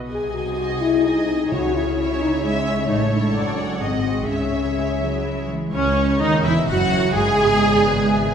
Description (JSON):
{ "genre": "classical", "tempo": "128 BPM", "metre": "3/4", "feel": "rubato", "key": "C# minor", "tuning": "A4 = 438 Hz", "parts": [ { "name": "concert harp", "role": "arpeggios", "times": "0.0-8.3 s", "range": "F#2 to E5", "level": "-27 LUFS", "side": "left 3 dB", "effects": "none" }, { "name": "rich symphonic violin section", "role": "melody", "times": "0.1-8.3 s", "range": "C#4 to G#5", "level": "-31 LUFS", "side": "left 2 dB", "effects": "none" }, { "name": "warm symphonic viola section", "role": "accompaniment", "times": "0.1-8.3 s", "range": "C#4 to D#5", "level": "-23 LUFS", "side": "right 2 dB", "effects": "none" }, { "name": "mellow French horn section", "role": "sustained chords", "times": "0.1-8.3 s", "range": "C#3 to G#4", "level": "-23 LUFS", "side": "left 3 dB", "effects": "none" }, { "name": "dark studio double bass section", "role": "bass", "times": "0.1-8.3 s", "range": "E1 to D#2", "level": "-27 LUFS", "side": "right 2 dB", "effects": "none" }, { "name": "warm symphonic cello section", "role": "bass", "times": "0.1-8.3 s", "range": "C#2 to G#3", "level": "-27 LUFS", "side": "right 4 dB", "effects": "none" }, { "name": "warm symphonic violin section", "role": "second line", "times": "0.6-8.3 s", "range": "C#5 to G#5", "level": "-27 LUFS", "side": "left 1 dB", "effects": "none" }, { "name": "timpani", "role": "percussion", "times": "1.5-2.2 s", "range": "C#3", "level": "-34 LUFS", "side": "right 1 dB", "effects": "none" } ], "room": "wet recital hall reverb, RT60 1.6 s", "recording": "recorded in a church or concert hall", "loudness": "-17 LUFS", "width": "side -7 dB against mid", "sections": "0.0-5.7 A section; 5.7-8.3 B section", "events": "none", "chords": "0.1 G#7/B#; 1.5 C#m; 2.9 A; 3.3 D/F#; 3.8 G#7; 4.3 C#m; 7.2 E7/G#", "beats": "| 0.12 0.59 1.05 | 1.52 1.98 2.44 | 2.90 3.35 3.81 | 4.28 4.77 5.25 | 5.74 6.21 6.68 | 7.16 7.62 8.08" }